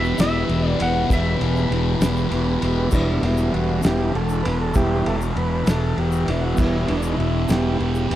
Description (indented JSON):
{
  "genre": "psychedelic rock",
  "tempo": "66 BPM (dotted quarters)",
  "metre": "6/8",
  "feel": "straight",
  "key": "E minor",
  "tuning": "A4 = 440 Hz",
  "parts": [
    { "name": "electric slide guitar", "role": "melody", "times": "0.0-2.3 s", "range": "E5 to F#5", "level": "-26 LUFS", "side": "equal", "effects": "slapback echo" },
    { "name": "combo organ", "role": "sustained chords", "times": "0.0-8.2 s", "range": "E3 to B4", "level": "-25 LUFS", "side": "right 2 dB", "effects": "none" },
    { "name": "thick fuzz guitar", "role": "riff", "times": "0.0-8.2 s", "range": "E2 to E3", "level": "-24 LUFS", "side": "left 1 dB", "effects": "distortion, phaser" },
    { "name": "fuzz fingered electric bass", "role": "bass", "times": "0.0-8.2 s", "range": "E1", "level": "-23 LUFS", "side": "equal", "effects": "overdrive" },
    { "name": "tube shaker", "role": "percussion", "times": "0.0-8.1 s", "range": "none", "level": "-40 LUFS", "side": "left 7 dB", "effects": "none" },
    { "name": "cloth-damped thuddy drum kit", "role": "drums", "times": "0.2-8.2 s", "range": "crash cymbal, kick drum, ride cymbal, snare drum", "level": "-26 LUFS", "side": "equal", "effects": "none" }
  ],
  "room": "little or no reverb",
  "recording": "dry, close 1970s-style studio recording",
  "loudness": "-18 LUFS",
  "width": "side -13 dB against mid",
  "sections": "0.0-2.9 A section; 2.9-8.2 B section",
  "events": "transistor combo organ solo 2.9-8.2",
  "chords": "0.0 Em"
}